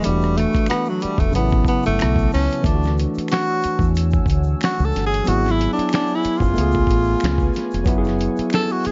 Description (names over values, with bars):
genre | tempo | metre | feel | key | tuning
R&B, neo-soul | 92 BPM | 4/4 | swing 54% on 16ths | unclear | A4 = 439 Hz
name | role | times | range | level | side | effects
clear tenor saxophone | melody | 0.0-8.9 s | F#3 to A4 | -25 LUFS | equal | none
overdriven tine electric piano | accompaniment | 0.0-8.9 s | C#3 to G#4 | -26 LUFS | equal | none
deep dark ambient pad | sustained chords | 0.0-8.9 s | A3 to E6 | -37 LUFS | equal | chorus, built-in reverb
lo-fi sampler-style drum kit | drums | 0.0-8.9 s | finger snaps, hi-hat, kick drum, rim click, snare drum | -24 LUFS | equal | none
egg shaker and finger snaps | percussion | 0.0-8.9 s | none | -43 LUFS | equal | none
deep dub fingered electric bass | bass | 0.1-8.9 s | E1 to E2 | -23 LUFS | equal | none
room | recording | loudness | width
light reverb, small room ambience | dark, warm production, vinyl crackle, nothing above 7.6 kHz | -19 LUFS | mono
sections
0.0-8.9 A section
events
tenor saxophone solo 0.0-8.9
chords
0.0 E9sus4; 1.3 A69; 2.6 Dmaj9#11; 5.3 G#m7b5; 6.6 C#7b13; 7.9 F#m9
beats
| 0.04 0.69 1.34 1.99 | 2.64 3.30 3.95 4.60 | 5.25 5.90 6.56 7.21 | 7.86 8.51